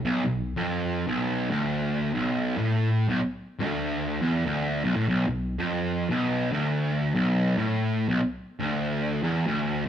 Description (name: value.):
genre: metal.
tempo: 96 BPM.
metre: 4/4.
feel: swing 62% on 8ths.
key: unclear.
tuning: A4 = 440 Hz.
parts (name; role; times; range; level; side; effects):
fuzz guitar; solo; 0.0-9.9 s; B1 to A2; -24 LUFS; equal; distortion.
room: moderate large studio reverb, RT60 1.2 s.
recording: band playing live in one room.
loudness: -24 LUFS.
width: side -9 dB against mid.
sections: 0.0-9.9 A section.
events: none.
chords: none.